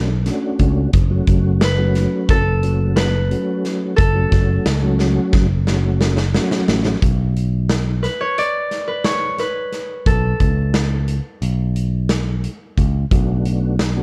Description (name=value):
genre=progressive instrumental, band music in an uneven meter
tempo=177 BPM (eighths)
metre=9/8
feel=straight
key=B minor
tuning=A4 = 440 Hz
part: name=concert harp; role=melody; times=0.0-12.3 s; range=A4 to D5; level=-24 LUFS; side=equal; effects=none
part: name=mellow tonewheel organ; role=accompaniment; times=0.0-7.0, 13.1-14.0 s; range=F#3 to F#4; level=-24 LUFS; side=equal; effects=chorus vibrato, slow rotary speaker
part: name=picked electric bass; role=bass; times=0.0-14.0 s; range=F#1 to C#2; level=-20 LUFS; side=equal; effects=none
part: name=huge arena drum kit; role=drums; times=0.3-13.9 s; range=hi-hat, kick drum, snare drum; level=-22 LUFS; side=equal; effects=none
room=little or no reverb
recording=worn, warbling old tape, cassette tape, warbly pitch drift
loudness=-18 LUFS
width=mono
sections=0.0-7.0 A section; 7.0-14.0 B section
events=drum fill 5.0-7.0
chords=0.0 Bm7; 0.9 F#m; 7.0 Bmadd9; 10.1 Aadd9/B; 13.1 Bm7